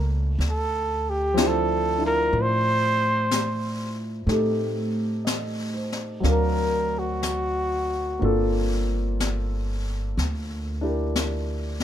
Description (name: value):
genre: jazz ballad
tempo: 62 BPM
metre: 4/4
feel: swing 66% on 8ths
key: unclear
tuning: A4 = 441 Hz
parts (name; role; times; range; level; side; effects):
- breathy trumpet; melody; 0.0-8.5 s; F#4 to C5; -24 LUFS; right 1 dB; plate reverb
- warm concert grand piano; accompaniment; 0.0-11.8 s; F3 to E#5; -28 LUFS; equal; none
- upright bass; bass; 0.0-11.8 s; G1 to A2; -27 LUFS; equal; none
- jazz brush drum kit; drums; 0.4-11.8 s; brushed snare drum, hi-hat, snare drum; -31 LUFS; left 4 dB; none
room: light reverb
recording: none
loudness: -22 LUFS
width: side -10 dB against mid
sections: 0.0-11.8 A section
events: trumpet solo 0.0-11.8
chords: 0.4 Dm7; 4.3 Am7b5; 6.2 D7alt; 8.2 Gm11